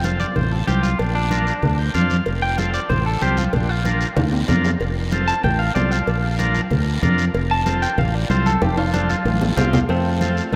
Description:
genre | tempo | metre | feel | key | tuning
latin, cumbia | 189 BPM | 4/4 | straight | F major | A4 = 440 Hz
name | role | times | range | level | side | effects
clean electric guitar | melody | 0.0-10.6 s | A3 to A5 | -27 LUFS | equal | spring reverb, slapback echo
combo organ | accompaniment | 0.0-10.4 s | C4 to G5 | -28 LUFS | equal | spring reverb
fingered electric bass | bass | 0.0-10.6 s | F1 to F2 | -23 LUFS | equal | none
congas | percussion | 0.0-10.6 s | none | -27 LUFS | equal | none
cowbell and timbales | percussion | 0.0-10.6 s | none | -31 LUFS | equal | none
guiro | percussion | 0.0-10.6 s | none | -37 LUFS | equal | none
clear tenor saxophone | second line | 9.9-10.6 s | F3 | -38 LUFS | equal | none
room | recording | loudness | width
moderate huge ambient reverb, RT60 8.5 s | in a vast, echoing space | -19 LUFS | mono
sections
0.0-9.9 A section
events
clean electric guitar solo 0.0-9.9; transistor combo organ fill 1.6-2.3; drum fill 4.2-4.8, 8.6-9.9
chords
0.0 F; 1.0 Bb; 2.3 F; 3.5 Bb; 4.8 F; 6.1 Bb; 7.3 F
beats
0.04 0.36 0.68 | 0.99 1.31 1.63 1.95 | 2.26 2.58 2.90 3.22 | 3.54 3.85 4.17 4.49 | 4.80 5.12 5.44 5.76 | 6.08 6.39 6.71 7.03 | 7.35 7.67 7.98 8.30 | 8.62 8.94 9.26 9.57 | 9.89 10.21 10.53

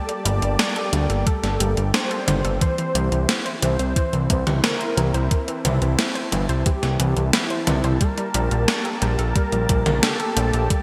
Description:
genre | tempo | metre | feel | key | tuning
synthwave | 89 BPM | 4/4 | straight | G dorian | A4 = 440 Hz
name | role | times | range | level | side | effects
unison lead | melody | 0.0-10.8 s | E4 to C5 | -30 LUFS | equal | delay
lush unison pad | sustained chords | 0.0-10.8 s | G3 to A5 | -32 LUFS | equal | chorus, sidechain pumping
unison pluck | arpeggios | 0.0-10.8 s | E3 to C5 | -32 LUFS | equal | digital delay
gated 80s digital drum machine | drums | 0.1-10.8 s | hi-hat, snare drum, toms | -25 LUFS | equal | gated reverb, gated reverb snare
fat analog bass | bass | 0.3-10.7 s | G1 to D2 | -24 LUFS | equal | none
electronic kick drum | drums | 1.3-10.8 s | none | -24 LUFS | equal | none
room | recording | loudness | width
moderate lush hall reverb, RT60 2.7 s | bright 1980s-style digital production | -21 LUFS | mono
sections
0.0-10.8 A section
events
none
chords
0.0 Gmadd9; 2.6 C; 8.0 Gmadd9/Bb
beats
0.59 1.27 1.94 | 2.62 3.29 3.96 4.64 | 5.31 5.99 6.66 7.33 | 8.01 8.68 9.36 10.03 | 10.70

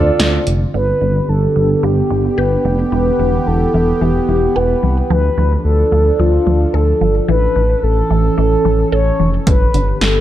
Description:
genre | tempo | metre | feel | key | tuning
synth-pop | 110 BPM | 4/4 | straight | unclear | A4 = 440 Hz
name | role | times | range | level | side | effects
mellow horn-like synth lead | melody | 0.0-10.2 s | F4 to D5 | -17 LUFS | left 1 dB | chorus, digital delay
sweeping resonant pad | sustained chords | 0.0-10.2 s | D3 to A4 | -20 LUFS | right 2 dB | chorus, phaser
smooth synth bass | bass | 0.0-10.2 s | E1 to D2 | -16 LUFS | equal | none
punchy analog drum machine | drums | 0.2-0.6, 9.5-10.1 s | hi-hat, kick drum, snare drum | -16 LUFS | equal | none
resonant blip pluck | arpeggios | 0.7-9.9 s | D3 to A4 | -23 LUFS | equal | phaser, digital delay
room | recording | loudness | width
light reverb | dark, warm production | -12 LUFS | side -12 dB against mid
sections
0.7-10.2 A section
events
none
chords
0.0 Dm7; 0.7 G; 2.9 Em; 5.1 Dm; 7.3 A; 9.5 G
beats
0.20 | 0.74 1.29 1.83 2.38 | 2.92 3.47 4.01 4.56 | 5.11 5.65 6.20 6.74 | 7.29 7.83 8.38 8.92 | 9.47 10.01

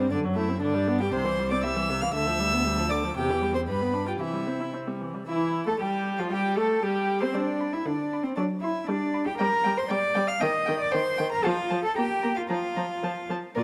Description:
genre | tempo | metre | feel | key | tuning
quick classical-period movement for string quartet | 117 BPM | 2/4 | straight | C major | A4 = 441 Hz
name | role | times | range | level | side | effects
warm violin | melody | 0.0-13.6 s | C5 to F6 | -35 LUFS | equal | none
dark violin | second line | 0.0-13.6 s | C4 to C6 | -34 LUFS | equal | none
rich viola | accompaniment | 0.0-13.6 s | C3 to F4 | -32 LUFS | equal | none
rich cello | bass | 0.0-13.6 s | C2 to F5 | -31 LUFS | equal | none
room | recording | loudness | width
moderate scoring stage reverb, RT60 2.0 s | none | -27 LUFS | mono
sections
0.0-5.3 A section; 5.3-13.6 A section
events
none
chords
0.1 D7/F#; 0.6 G; 1.1 C; 2.1 G7/D; 3.2 C/E; 3.7 G7; 4.2 C; 5.3 Emadd11; 6.3 Gsus2; 6.8 C5/G; 7.3 G; 8.4 D7/F# (rootless); 8.9 G; 9.4 Gm; 10.4 Eb; 11.4 F; 12.0 Bb5; 12.5 N.C.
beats
| 0.10 0.61 | 1.13 1.64 | 2.14 2.65 | 3.16 3.68 | 4.21 4.75 | 5.28 5.80 | 6.32 6.83 | 7.35 7.86 | 8.37 8.88 | 9.39 9.90 | 10.41 10.93 | 11.45 11.97 | 12.50 13.04 | 13.57

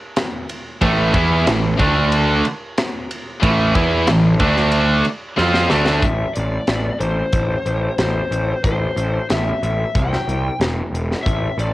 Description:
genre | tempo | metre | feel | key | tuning
hard rock | 92 BPM | 4/4 | straight | A minor | A4 = 440 Hz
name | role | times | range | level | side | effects
tight metal drum kit | drums | 0.2-11.7 s | hi-hat, kick drum, ride cymbal, snare drum | -22 LUFS | equal | cassette tape
heavy high-gain guitar | riff | 0.8-6.0 s | A2 to F4 | -24 LUFS | left 6 dB | distortion, cassette tape
overdriven electric guitar | riff | 0.8-6.0 s | A2 to F4 | -17 LUFS | right 2 dB | cassette tape
fuzz picked electric bass | bass | 0.8-11.7 s | E1 to F2 | -20 LUFS | equal | overdrive
lead guitar through a small cranked amp | melody | 6.0-11.7 s | C5 to G5 | -24 LUFS | left 2 dB | overdrive, tape echo
room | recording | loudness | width
small room ambience | home recording on cassette | -16 LUFS | side -17 dB against mid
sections
0.0-6.0 A section; 6.0-11.7 B section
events
drum fill 5.4-6.0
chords
0.0 N.C.; 0.8 A5; 1.8 D5; 3.4 A5; 4.4 D5; 5.4 Am; 9.9 C5; 10.6 N.C.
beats
0.17 | 0.82 1.47 2.12 2.77 | 3.43 4.08 4.73 5.38 | 6.03 6.69 7.34 7.99 | 8.64 9.30 9.95 10.60 | 11.25

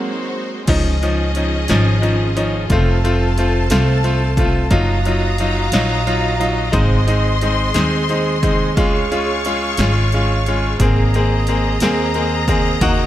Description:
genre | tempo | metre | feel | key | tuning
six-eight pop ballad | 59 BPM (dotted quarters) | 6/8 | straight | Db major | A4 = 440 Hz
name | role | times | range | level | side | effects
bright baby grand piano | accompaniment | 0.0-13.1 s | F3 to Ab4 | -19 LUFS | left 1 dB | none
warm studio string section | sustained chords | 0.0-13.1 s | Ab3 to Db6 | -22 LUFS | equal | none
upright bass | bass | 0.7-13.1 s | F1 to Eb2 | -18 LUFS | equal | none
punchy analog drum machine | drums | 0.7-13.0 s | crash cymbal, hi-hat, kick drum, snare drum | -20 LUFS | equal | overdrive
room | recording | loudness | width
light reverb, studio ambience | none | -14 LUFS | side -13 dB against mid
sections
0.7-13.1 A section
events
break 0.0-0.7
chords
0.0 Ab7; 0.7 Dbadd9; 2.7 F; 4.7 Ebmadd9/Gb; 6.7 Ab; 8.8 Db; 10.8 Abadd9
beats
| 0.68 1.69 | 2.70 3.70 | 4.71 5.72 | 6.74 7.75 | 8.77 9.79 | 10.80 11.81 | 12.82

